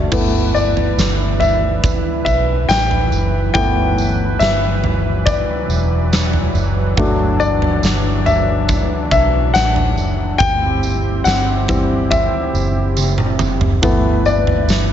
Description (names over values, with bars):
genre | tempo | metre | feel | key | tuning
pop ballad | 70 BPM | 4/4 | straight | G major | A4 = 442 Hz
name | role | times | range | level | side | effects
warm baby grand piano | accompaniment | 0.0-14.9 s | D3 to G5 | -18 LUFS | left 3 dB | none
warm analog pad | sustained chords | 0.0-14.9 s | E3 to B4 | -22 LUFS | right 1 dB | chorus
vintage muted fingered electric bass | bass | 0.0-14.9 s | E1 to B1 | -19 LUFS | equal | none
huge arena drum kit | drums | 0.1-14.9 s | crash cymbal, kick drum, snare drum, toms | -19 LUFS | right 1 dB | none
tambourine | percussion | 0.1-14.9 s | none | -31 LUFS | right 9 dB | none
room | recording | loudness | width
light reverb | nothing above 7.7 kHz | -14 LUFS | side -10 dB against mid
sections
0.1-14.9 A section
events
grand piano solo 0.1-14.9; drum fill 13.0-13.8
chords
0.1 G6; 7.0 D/G; 10.4 C/G; 13.8 G6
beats
| 0.12 0.97 1.83 2.69 | 3.54 4.40 5.26 6.12 | 6.97 7.83 8.69 9.54 | 10.40 11.26 12.12 12.97 | 13.83 14.69